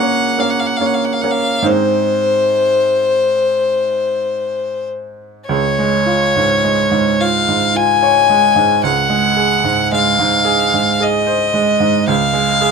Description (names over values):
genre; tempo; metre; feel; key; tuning
classical, romantic duo for violin and grand piano; 46-56 BPM; 3/4; rubato; Db major; A4 = 440 Hz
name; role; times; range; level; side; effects
clear violin; melody; 0.0-12.7 s; C5 to Ab5; -14 LUFS; left 4 dB; none
bright baby grand piano; accompaniment; 0.0-12.7 s; Db2 to Db5; -17 LUFS; right 5 dB; none
room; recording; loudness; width
moderate studio reverb, RT60 0.5 s; minimal, uncompressed stereo recording; -12 LUFS; side -5 dB against mid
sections
0.0-5.5 A section; 5.5-12.7 B section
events
none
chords
0.0 Bbm; 1.7 Ab; 5.5 Db; 8.8 Ab7/Db; 12.1 Db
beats
0.39 | 1.66 2.96 4.24 | 5.48 6.64 7.76 | 8.84 9.93 11.02 | 12.09